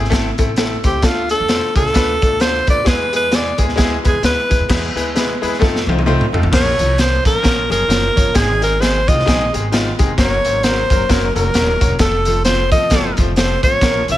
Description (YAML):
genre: uptempo 1960s-style soul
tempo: 131 BPM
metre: 4/4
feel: swing 59% on 8ths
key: Bb minor from 6.5 s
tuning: A4 = 440 Hz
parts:
  - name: bright concert grand piano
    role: accompaniment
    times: 0.0-14.2 s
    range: Eb3 to Db5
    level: -21 LUFS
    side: left 3 dB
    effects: none
  - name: upright bass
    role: bass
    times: 0.0-14.2 s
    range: Eb1 to F2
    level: -21 LUFS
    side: equal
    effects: none
  - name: crunchy breakbeat drum kit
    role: drums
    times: 0.0-14.2 s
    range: crash cymbal, hi-hat, kick drum, snare drum, toms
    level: -17 LUFS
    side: equal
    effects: none
  - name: breathy alto saxophone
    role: melody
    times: 0.9-14.2 s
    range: F4 to F5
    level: -17 LUFS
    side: right 1 dB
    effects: none
room: light reverb, studio ambience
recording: none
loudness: -13 LUFS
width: side -14 dB against mid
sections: 0.0-4.7 A section; 4.7-6.5 B section; 6.5-14.2 C section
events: alto saxophone solo 0.0-4.7; drum fill 5.6-6.5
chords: 0.0 Am; 1.0 Dm; 2.9 E; 5.6 F7; 6.5 Bbm; 8.4 Ab; 10.2 Gb; 12.0 F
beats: 0.12 0.57 | 1.03 1.49 1.95 2.41 | 2.87 3.32 3.78 4.24 | 4.70 5.16 5.61 6.07 | 6.53 6.98 7.44 7.90 | 8.35 8.81 9.27 9.72 | 10.18 10.63 11.09 11.54 | 12.00 12.45 12.91 13.36 | 13.82